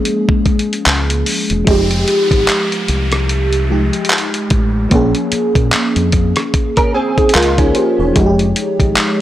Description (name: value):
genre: contemporary R&B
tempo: 74 BPM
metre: 4/4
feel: swing 58% on 16ths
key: F minor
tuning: A4 = 445 Hz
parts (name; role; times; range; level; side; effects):
- FM electric piano with soft pad layer; accompaniment; 0.0-9.2 s; F3 to Db5; -16 LUFS; equal; chorus, phaser
- dusty soul sampler-style drum kit; drums; 0.1-9.2 s; handclaps, hi-hat, kick drum, rim click; -15 LUFS; equal; none
- deep dub fingered electric bass; bass; 0.9-8.9 s; E1 to Bb2; -17 LUFS; equal; none
- downlifter; sound effects; 1.7-8.2 s; none; -26 LUFS; equal; none
- direct-recorded clean electric guitar; arpeggios; 6.8-8.1 s; F3 to Bb4; -16 LUFS; right 2 dB; ensemble chorus, tape echo
room: light reverb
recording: dry, gritty hardware recording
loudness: -12 LUFS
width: side -13 dB against mid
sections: 0.0-1.7 A section; 1.7-9.2 B section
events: none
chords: 0.0 Bbm7; 1.7 Fm9; 4.9 Bbm7; 8.2 Fm9